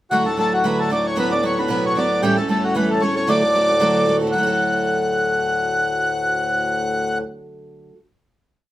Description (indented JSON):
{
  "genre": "celtic folk, Celtic reel",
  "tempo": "228 BPM",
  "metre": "4/4",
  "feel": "swing 53% on 8ths",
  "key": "D major",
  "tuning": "A4 = 440 Hz",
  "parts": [
    { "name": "accordion", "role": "melody", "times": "0.1-7.2 s", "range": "F#4 to F#5", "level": "-19 LUFS", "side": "left 1 dB", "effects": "none" },
    { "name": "picked steel-string acoustic guitar", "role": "accompaniment", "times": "0.1-8.0 s", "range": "A2 to A4", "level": "-22 LUFS", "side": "right 2 dB", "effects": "none" },
    { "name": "hand-pumped harmonium", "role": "drone", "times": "0.1-7.2 s", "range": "D2 to A2", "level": "-26 LUFS", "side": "left 2 dB", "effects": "none" }
  ],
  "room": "wet studio ambience, RT60 0.5 s",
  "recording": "band playing live in one room",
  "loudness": "-17 LUFS",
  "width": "side -14 dB against mid",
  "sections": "0.1-4.3 A section; 4.3-6.4 final chord",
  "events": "none",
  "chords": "0.1 D; 1.2 Bm; 2.2 A7; 3.3 D",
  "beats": "| 0.12 0.38 0.65 0.91 | 1.17 1.44 1.70 1.97 | 2.23 2.49 2.75 3.02 | 3.28 3.54 3.80 4.06 | 4.32 4.59 4.85 5.11 | 5.37 5.63 5.90 6.16"
}